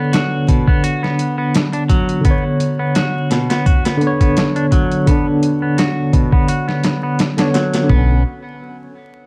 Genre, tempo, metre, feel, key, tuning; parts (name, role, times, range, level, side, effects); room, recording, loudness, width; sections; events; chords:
trip hop; 85 BPM; 4/4; swing 54% on 16ths; A4 = 438 Hz
bright tine electric piano; accompaniment; 0.0-8.2 s; D3 to C#5; -20 LUFS; equal; tremolo, tape echo
clean electric guitar; arpeggios; 0.0-8.2 s; B2 to F#4; -25 LUFS; equal; low-pass filter, digital delay
boom bap sampler-style drum kit; drums; 0.1-8.1 s; hi-hat, kick drum, snare drum, toms; -18 LUFS; equal; vintage 12-bit sampler grit, studio reverb
deep dub fingered electric bass; bass; 7.9-8.2 s; B1; -16 LUFS; equal
digital ambience; dark, warm production, vinyl crackle; -16 LUFS; mono
0.0-7.9 A section; 7.9-9.3 B section
filter sweep on clean electric guitar 0.0-7.9
0.0 Bmadd9